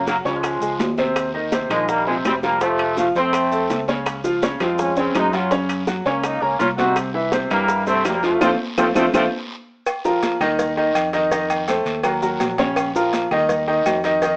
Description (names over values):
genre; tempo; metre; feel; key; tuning
latin, salsa; 165 BPM; 4/4; straight; Bb harmonic minor from 9.9 s; A4 = 440 Hz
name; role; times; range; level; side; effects
bright trombone section; melody; 0.0-9.2 s; F3 to Gb4; -23 LUFS; equal; none
fingered electric bass; bass; 0.0-14.4 s; F1 to G2; -33 LUFS; equal; none
bright concert grand piano; accompaniment; 0.1-14.4 s; C3 to Db6; -23 LUFS; equal; none
bongos and cowbell; percussion; 0.1-14.4 s; none; -30 LUFS; equal; none
congas; percussion; 0.1-14.4 s; none; -33 LUFS; equal; none
guiro; percussion; 0.1-14.4 s; none; -37 LUFS; equal; none
maracas; percussion; 0.1-14.4 s; none; -43 LUFS; equal; none
claves; percussion; 0.4-14.0 s; none; -35 LUFS; equal; none
timbales and agogo bells; percussion; 0.4-14.4 s; none; -29 LUFS; equal; none
room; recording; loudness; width
moderate studio reverb, RT60 0.8 s; worn, warbling old tape, cassette tape, warbly pitch drift, small speaker sound; -20 LUFS; mono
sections
0.0-9.9 A section; 9.9-14.4 B section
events
band accent 8.4-9.9; drum fill 9.0-9.9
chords
0.0 Gbsus2; 1.2 Eb6; 2.6 F; 4.1 Db; 5.5 Gb; 7.0 C7; 8.4 F; 9.9 Bb5; 10.6 Ebsus2; 11.3 F7; 12.0 Ebm; 12.8 Bbm; 13.5 Ebsus2